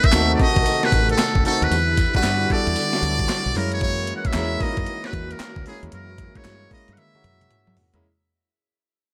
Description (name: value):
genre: R&B, new jack swing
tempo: 114 BPM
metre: 4/4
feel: swing 64% on 16ths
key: unclear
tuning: A4 = 440 Hz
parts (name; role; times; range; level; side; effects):
- trumpet with metal mute; melody; 0.0-7.8 s; G#4 to F#5; -26 LUFS; equal; none
- warm studio string section; sustained chords; 0.0-8.0 s; C3 to F#4; -32 LUFS; equal; none
- clean 12-bit digital drum machine; drums; 0.0-8.0 s; handclaps, hi-hat, kick drum, snare drum, tambourine, toms; -25 LUFS; equal; gated reverb
- warm grand piano; accompaniment; 0.1-8.0 s; F#3 to A4; -29 LUFS; equal; none
- deep dub fingered electric bass; bass; 0.1-8.0 s; F#1 to F#3; -28 LUFS; equal; none
room: little or no reverb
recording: none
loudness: -21 LUFS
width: mono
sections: 0.0-8.0 A section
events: fade-out 0.0-8.0; drum fill 7.0-8.0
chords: 0.0 B7b9 (rootless); 1.7 Em7; 3.6 F#7